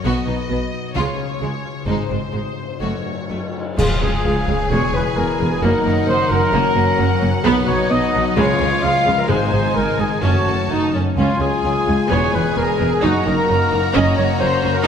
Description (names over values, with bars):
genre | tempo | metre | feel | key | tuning
cinematic, heroic adventure film score | 130 BPM | 4/4 | straight | Db major | A4 = 440 Hz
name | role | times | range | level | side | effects
warm symphonic violin section | melody | 0.0-14.8 s | C5 to Bb5 | -28 LUFS | left 3 dB | none
clear studio violin section | second line | 0.0-14.9 s | Ab3 to Ab4 | -28 LUFS | left 3 dB | none
warm symphonic viola section | accompaniment | 0.0-14.9 s | Ab3 to Eb4 | -24 LUFS | right 2 dB | none
concert harp | arpeggios | 0.0-14.9 s | E2 to Ab4 | -25 LUFS | left 8 dB | none
rich symphonic cello section | bass | 0.0-14.7 s | Db2 to Db3 | -24 LUFS | right 2 dB | none
rich symphonic double bass section | bass | 0.0-14.7 s | E1 to Db2 | -24 LUFS | right 3 dB | none
cymbal swell, clash cymbals and concert bass drum | percussion | 0.0-4.7 s | none | -25 LUFS | equal | none
timpani | percussion | 0.9-2.5, 8.4-10.0 s | Ab2 to Db3 | -28 LUFS | right 1 dB | none
warm clarinet | second line | 3.8-14.9 s | F4 to F5 | -25 LUFS | left 2 dB | none
warm French horn section | sustained chords | 3.8-14.9 s | E3 to Ab4 | -25 LUFS | left 3 dB | none
dark trumpet section | stabs | 3.8-14.9 s | F4 to F5 | -21 LUFS | equal | none
room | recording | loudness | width
wet scoring stage reverb, RT60 1.9 s | none | -16 LUFS | side -7 dB against mid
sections
0.0-3.8 A section; 3.8-14.9 B section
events
band accent 3.8-4.2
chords
0.0 Cb; 1.0 Db; 1.9 Ab; 2.8 Gbm; 3.8 Db; 4.7 E; 5.6 Ebm/Gb; 6.5 Gb; 7.5 Cb; 8.4 Db; 9.3 Ab; 10.2 Gbm; 11.2 Db; 12.1 E; 13.0 Ebm/Gb; 13.9 Gb